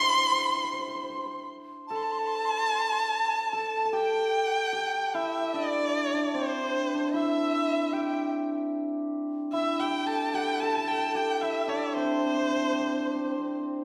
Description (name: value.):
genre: chinese traditional, Chinese chamber ensemble.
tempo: 74 BPM.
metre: 4/4.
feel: rubato.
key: C gong mode.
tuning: A4 = 440 Hz.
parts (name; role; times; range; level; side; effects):
warm erhu; melody; 0.0-13.6 s; C5 to C6; -31 LUFS; equal; none.
bright reedy dizi; second line; 0.0-13.6 s; C5 to C6; -36 LUFS; equal; none.
hammered dulcimer; second line; 0.0-13.8 s; C4 to C5; -32 LUFS; equal; none.
room: wet scoring stage reverb, RT60 1.6 s.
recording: recorded in a church or concert hall.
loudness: -28 LUFS.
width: mono.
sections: 0.0-2.3 A section; 2.3-13.8 B section.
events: none.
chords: none.